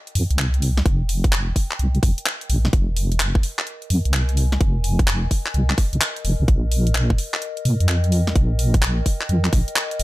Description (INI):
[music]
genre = UK garage, two-step garage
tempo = 128 BPM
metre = 4/4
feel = swing 65% on 16ths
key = F minor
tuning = A4 = 440 Hz
[part]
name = warbly tape-like pad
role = texture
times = 0.0-10.0 s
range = Bb4 to Ab5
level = -34 LUFS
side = left 2 dB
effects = chorus, built-in reverb, sidechain pumping
[part]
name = garage drum kit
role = drums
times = 0.1-10.0 s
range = handclaps, hi-hat, snare drum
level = -24 LUFS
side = equal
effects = none
[part]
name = deep soft wobble bass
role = bass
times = 0.2-10.0 s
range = Eb1 to Bb2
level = -19 LUFS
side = equal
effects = chorus, tube saturation, sidechain pumping
[part]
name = electronic kick drum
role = drums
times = 0.9-9.6 s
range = none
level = -18 LUFS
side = equal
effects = none
[sound]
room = little or no reverb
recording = none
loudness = -18 LUFS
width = side -18 dB against mid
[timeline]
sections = 0.0-10.0 A section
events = fade-in on ambient pad 0.0-10.0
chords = 0.0 Fm7; 6.5 Bbsus4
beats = 0.39 | 0.86 1.32 1.79 2.26 | 2.73 3.20 3.67 4.14 | 4.61 5.08 5.54 6.01 | 6.48 6.95 7.42 7.89 | 8.36 8.82 9.29 9.76